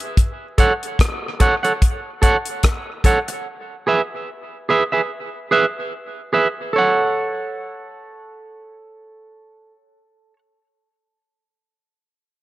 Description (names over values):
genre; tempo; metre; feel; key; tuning
dub reggae; 73 BPM; 4/4; swing 57% on 16ths; F# minor; A4 = 439 Hz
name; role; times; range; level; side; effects
damped 70s drum kit; drums; 0.0-3.4 s; hi-hat, kick drum, rim click; -17 LUFS; equal; none
clean electric guitar; accompaniment; 0.6-10.4 s; G#4 to F#5; -19 LUFS; right 3 dB; tape echo
room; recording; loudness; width
moderate spring reverb, RT60 2.9 s; none; -17 LUFS; side -16 dB against mid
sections
0.0-6.7 A section; 6.7-10.0 B section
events
none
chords
0.2 F#m; 3.5 E; 6.7 F#m